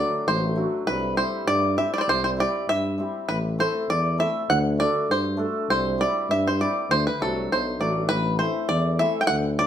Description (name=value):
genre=balkan folk, Balkan wedding band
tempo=100 BPM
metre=2/4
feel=straight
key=D mixolydian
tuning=A4 = 440 Hz
part: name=bluegrass banjo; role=melody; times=0.0-9.7 s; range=A4 to G5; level=-23 LUFS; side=equal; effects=none
part: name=hammered dulcimer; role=accompaniment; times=0.0-9.7 s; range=E3 to A4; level=-29 LUFS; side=left 1 dB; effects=none
part: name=warm tuba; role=bass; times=0.0-9.6 s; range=A1 to G2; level=-26 LUFS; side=equal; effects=none
room=wet studio reverb, RT60 0.8 s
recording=band playing live in one room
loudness=-21 LUFS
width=side -10 dB against mid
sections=0.0-8.1 A section; 8.1-9.7 A section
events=none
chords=0.0 D; 0.9 C; 3.3 Am; 4.5 D; 5.7 C; 6.9 D; 8.1 Am